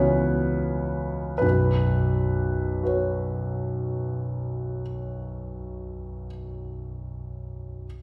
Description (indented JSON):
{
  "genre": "classical, impressionist solo piano",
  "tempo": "43 BPM",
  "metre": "3/4",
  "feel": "rubato",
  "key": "unclear",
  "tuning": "A4 = 439 Hz",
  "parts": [
    { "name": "warm concert grand piano", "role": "solo", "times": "0.0-7.9 s", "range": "B1 to C#5", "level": "-27 LUFS", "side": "equal", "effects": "none" }
  ],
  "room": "wet recital hall reverb, RT60 1.4 s",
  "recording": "recorded in a church or concert hall",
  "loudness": "-26 LUFS",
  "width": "mono",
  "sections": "0.0-1.4 A section; 1.4-5.6 B section",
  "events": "slowing down 0.0-1.4",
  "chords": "0.0 C#m11; 1.4 Bsus2"
}